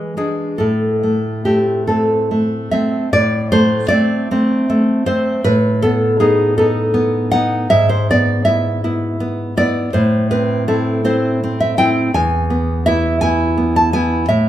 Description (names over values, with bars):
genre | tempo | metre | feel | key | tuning
romantic piece for solo classical guitar | 46-57 BPM (dotted quarters) | 6/8 | rubato | A minor | A4 = 439 Hz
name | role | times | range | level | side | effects
nylon-string guitar | solo | 0.0-14.5 s | E2 to A5 | -14 LUFS | equal | none
room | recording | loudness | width
moderate recital hall reverb, RT60 1.4 s | minimal, uncompressed stereo recording, lossy compression artefacts | -14 LUFS | side -12 dB against mid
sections
0.0-3.1 A section; 3.1-14.5 A section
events
none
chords
0.0 E7; 0.6 Am; 5.5 B7/A; 7.7 E/G#; 9.9 Am; 12.1 E